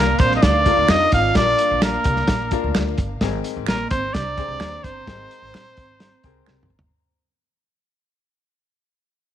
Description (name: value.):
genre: uptempo 1960s-style soul.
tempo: 129 BPM.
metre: 4/4.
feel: straight.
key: unclear.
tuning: A4 = 439 Hz.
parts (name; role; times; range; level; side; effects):
bright trumpet; melody; 0.0-6.7 s; Bb4 to F5; -20 LUFS; equal; slapback echo.
dark chamber string section; second line; 0.0-6.9 s; C4 to Bb5; -31 LUFS; left 3 dB; none.
vibraphone with hard mallets; second line; 0.0-6.7 s; Bb3 to F4; -29 LUFS; right 14 dB; none.
bright upright piano; accompaniment; 0.0-6.7 s; Ab2 to C5; -28 LUFS; left 15 dB; none.
upright bass; bass; 0.0-6.9 s; G1 to F2; -25 LUFS; equal; none.
warm soul drum kit; drums; 0.2-6.9 s; hi-hat, kick drum, snare drum, toms; -20 LUFS; equal; none.
finger snap; percussion; 0.9-6.6 s; none; -32 LUFS; right 13 dB; none.
room: light reverb.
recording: 1960s-style stereo with parts hard left and right.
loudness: -16 LUFS.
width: side -11 dB against mid.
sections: 0.0-6.9 A section.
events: fade-out 0.0-6.9; drum fill 6.5-6.9.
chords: 0.0 Bb; 3.2 Abadd9.